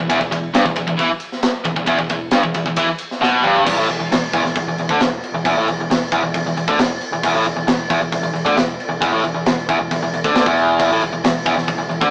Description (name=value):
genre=heavy metal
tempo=134 BPM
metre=4/4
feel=straight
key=E minor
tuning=A4 = 441 Hz
part: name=distorted electric guitar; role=riff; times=0.0-12.1 s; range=E2 to E3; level=-20 LUFS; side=equal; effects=overdrive
part: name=scooped high-gain guitar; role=riff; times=0.0-3.7 s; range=E2 to E3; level=-24 LUFS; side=equal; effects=distortion
part: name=picked electric bass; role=bass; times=0.0-12.1 s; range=E1 to E2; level=-33 LUFS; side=equal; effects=none
part: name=tight metal drum kit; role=drums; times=0.1-12.1 s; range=crash cymbal, kick drum, ride cymbal, snare drum, toms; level=-23 LUFS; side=equal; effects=none
room=moderate studio reverb, RT60 0.6 s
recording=rough rehearsal-room recording, small speaker sound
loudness=-18 LUFS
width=mono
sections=0.0-3.7 A section; 3.7-12.1 B section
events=drum fill 3.2-3.7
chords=0.0 Em; 3.7 E7sus4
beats=| 0.08 0.53 0.98 1.42 | 1.87 2.32 2.76 3.21 | 3.66 4.10 4.55 5.00 | 5.44 5.89 6.33 6.78 | 7.23 7.67 8.12 8.56 | 9.01 9.45 9.90 10.34 | 10.79 11.23 11.68